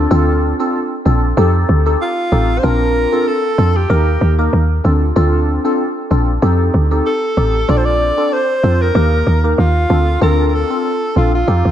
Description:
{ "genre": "afrobeats", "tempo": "95 BPM", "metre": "4/4", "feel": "swing 55% on 16ths", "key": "Bb major", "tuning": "A4 = 440 Hz", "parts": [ { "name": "glassy digital keys", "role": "accompaniment", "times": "0.0-11.7 s", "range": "Bb3 to Bb4", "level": "-17 LUFS", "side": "left 1 dB", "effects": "chorus" }, { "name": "woody log drum bass", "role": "bass", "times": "0.0-11.7 s", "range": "A1 to F2", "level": "-14 LUFS", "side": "equal", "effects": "none" }, { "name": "warm alto saxophone", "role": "melody", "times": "2.0-11.7 s", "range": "F4 to D5", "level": "-18 LUFS", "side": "equal", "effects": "ping-pong delay" } ], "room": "light reverb, small room ambience", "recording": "none", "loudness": "-12 LUFS", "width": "side -10 dB against mid", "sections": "0.0-2.6 A section; 2.6-11.7 B section", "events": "none", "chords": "0.0 Bbmaj7/D; 1.4 F7; 2.6 Bbmaj7; 3.9 Eb; 4.8 Bbmaj7/D; 6.4 F7; 7.7 Bbmaj7; 9.0 Eb; 9.9 Bbmaj7/D" }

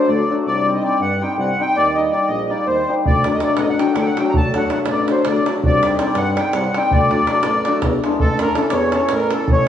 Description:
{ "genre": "balkan folk, Balkan wedding band", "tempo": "326 BPM (eighths)", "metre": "7/8", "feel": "straight", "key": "D phrygian dominant", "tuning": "A4 = 440 Hz", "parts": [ { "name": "accordion", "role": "melody", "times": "0.0-9.7 s", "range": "A4 to Bb5", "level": "-19 LUFS", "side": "equal", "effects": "light tremolo tuning" }, { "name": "hammered dulcimer", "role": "accompaniment", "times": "0.0-9.7 s", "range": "E3 to A4", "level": "-20 LUFS", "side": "left 3 dB", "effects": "none" }, { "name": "warm tuba", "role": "bass", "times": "0.1-9.7 s", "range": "A1 to G2", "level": "-23 LUFS", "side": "equal", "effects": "none" }, { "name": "davul", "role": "percussion", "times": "3.1-9.6 s", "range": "none", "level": "-21 LUFS", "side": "right 1 dB", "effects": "none" } ], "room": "wet stone room reverb, RT60 1.3 s", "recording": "band playing live in one room", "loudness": "-15 LUFS", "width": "side -10 dB against mid", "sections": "0.0-8.2 A section; 8.2-9.7 B section", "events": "none", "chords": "0.5 Cm; 1.8 Eb; 3.1 D; 5.6 Cm; 6.9 D; 7.8 E7; 8.2 A" }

